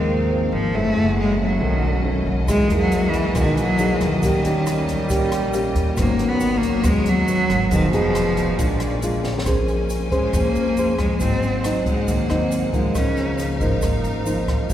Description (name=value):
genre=bossa nova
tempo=138 BPM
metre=4/4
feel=straight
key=Eb minor, Bb minor from 9.5 s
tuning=A4 = 438 Hz
part: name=clear cello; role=melody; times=0.0-13.4 s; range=D#3 to Db4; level=-22 LUFS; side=left 1 dB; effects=none
part: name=breathy trombone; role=second line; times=0.0-9.2 s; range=Bb2 to G3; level=-30 LUFS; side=right 2 dB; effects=none
part: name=nylon-string guitar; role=accompaniment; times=0.0-14.7 s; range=Gb2 to C5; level=-23 LUFS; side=equal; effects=none
part: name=bright studio string section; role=sustained chords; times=0.0-14.7 s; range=A#3 to Ab5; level=-32 LUFS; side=equal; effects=none
part: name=upright bass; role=bass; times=0.0-14.7 s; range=F1 to F2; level=-25 LUFS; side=equal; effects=none
part: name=open jazz drum kit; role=drums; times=2.5-14.7 s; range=hi-hat, kick drum, rim click, snare drum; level=-26 LUFS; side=equal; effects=none
part: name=egg shaker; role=percussion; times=2.5-14.7 s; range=none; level=-42 LUFS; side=right 5 dB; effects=none
room=wet cathedral reverb, RT60 4.3 s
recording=recorded in a church or concert hall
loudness=-18 LUFS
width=side -11 dB against mid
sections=0.0-9.5 A section; 9.5-14.7 B section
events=drum fill 9.2; cello solo 9.5-14.7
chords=0.0 Ab69; 0.7 Gbm7; 1.6 B9; 2.5 Emaj9#11; 4.2 Eb7; 6.0 Abm11; 7.7 Fm7b5; 8.6 Bb7; 9.5 Bbm9; 11.2 Ab7; 13.0 Db69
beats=0.31 | 0.74 1.18 1.62 2.05 | 2.49 2.92 3.36 3.80 | 4.23 4.67 5.11 5.54 | 5.98 6.41 6.85 7.29 | 7.72 8.16 8.59 9.03 | 9.46 9.90 10.34 10.77 | 11.21 11.64 12.08 12.52 | 12.95 13.39 13.82 14.26 | 14.69